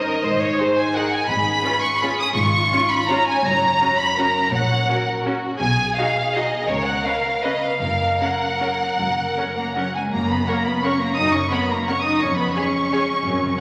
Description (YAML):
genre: classical, orchestral ballroom waltz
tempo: 146-188 BPM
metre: 3/4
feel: rubato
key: F# major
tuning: A4 = 438 Hz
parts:
  - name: rich symphonic violin section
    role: melody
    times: 0.0-13.6 s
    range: Bb4 to D#6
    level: -23 LUFS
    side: equal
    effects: none
  - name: warm symphonic violin section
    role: second line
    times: 0.0-13.6 s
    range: E#4 to D#6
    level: -28 LUFS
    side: equal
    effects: none
  - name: concert harp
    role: arpeggios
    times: 0.0-13.6 s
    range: E#2 to Eb5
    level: -32 LUFS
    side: equal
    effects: none
  - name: clear symphonic double bass section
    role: bass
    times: 0.2-13.5 s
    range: F#1 to F#2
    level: -30 LUFS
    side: equal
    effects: none
  - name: warm symphonic cello section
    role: bass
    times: 0.2-13.6 s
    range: F#2 to D#4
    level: -28 LUFS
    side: equal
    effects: none
  - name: clear symphonic viola section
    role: accompaniment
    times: 0.6-13.0 s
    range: C#4 to C#5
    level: -32 LUFS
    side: equal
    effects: none
room: wet scoring stage reverb, RT60 1.9 s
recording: vinyl crackle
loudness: -20 LUFS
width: mono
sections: 0.0-10.1 A section; 10.1-13.6 B section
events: none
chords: 0.2 Ab; 1.3 C#7/G#; 3.4 F#; 4.5 F#/A#; 5.6 G#m7/B; 6.7 C#7; 7.8 F#; 12.2 C#/E#